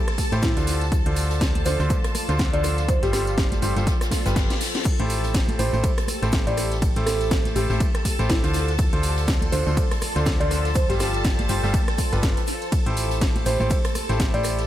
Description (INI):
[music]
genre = piano house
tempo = 122 BPM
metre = 4/4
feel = swing 58% on 16ths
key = A minor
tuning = A4 = 440 Hz
[part]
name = string machine, violins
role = sustained chords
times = 0.0-14.7 s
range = A4 to A5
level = -32 LUFS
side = equal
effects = ensemble chorus, sidechain pumping
[part]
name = deep dark ambient pad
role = texture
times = 0.0-14.7 s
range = F4 to C6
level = -35 LUFS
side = left 1 dB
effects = chorus, built-in reverb, sidechain pumping
[part]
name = house drum kit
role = drums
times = 0.1-14.7 s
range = crash cymbal, hi-hat, ride cymbal, rim click, snare drum, tambourine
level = -30 LUFS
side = equal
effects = overdrive, analog delay
[part]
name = swinging big-band drum kit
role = drums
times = 0.1-14.7 s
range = hi-hat, shaker, snare drum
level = -39 LUFS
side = right 1 dB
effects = none
[part]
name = electronic kick drum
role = drums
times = 0.2-14.3 s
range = none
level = -23 LUFS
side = equal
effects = overdrive
[part]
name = congas and tambourine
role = percussion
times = 0.2-14.7 s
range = none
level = -36 LUFS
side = right 1 dB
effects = none
[part]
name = clear concert grand piano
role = riff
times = 0.3-14.6 s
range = D3 to C5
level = -30 LUFS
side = equal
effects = sidechain pumping, analog delay
[part]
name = solid FM bass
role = bass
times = 0.3-14.7 s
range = G1 to A2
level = -25 LUFS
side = equal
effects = sidechain pumping
[part]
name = buzzing marimba with soft mallets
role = melody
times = 0.4-14.5 s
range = E4 to D5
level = -29 LUFS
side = right 1 dB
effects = analog delay
[part]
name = reverse cymbal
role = sound effects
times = 4.1-4.9 s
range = none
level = -33 LUFS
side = left 7 dB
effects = none
[sound]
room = light reverb, studio reverb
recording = echo-heavy mix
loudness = -20 LUFS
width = side -12 dB against mid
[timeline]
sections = 0.0-14.7 A section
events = reverse cymbal 4.1-4.9; drum fill 4.1-4.9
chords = 0.0 Am7; 0.7 Dm7; 2.9 G9sus4; 4.9 Am7; 8.5 Dm7; 10.8 G9sus4; 12.7 Am7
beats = 0.43 | 0.92 1.41 1.90 2.39 | 2.89 3.38 3.87 4.36 | 4.85 5.34 5.84 6.33 | 6.82 7.31 7.80 8.30 | 8.79 9.28 9.77 10.26 | 10.76 11.25 11.74 12.23 | 12.72 13.21 13.71 14.20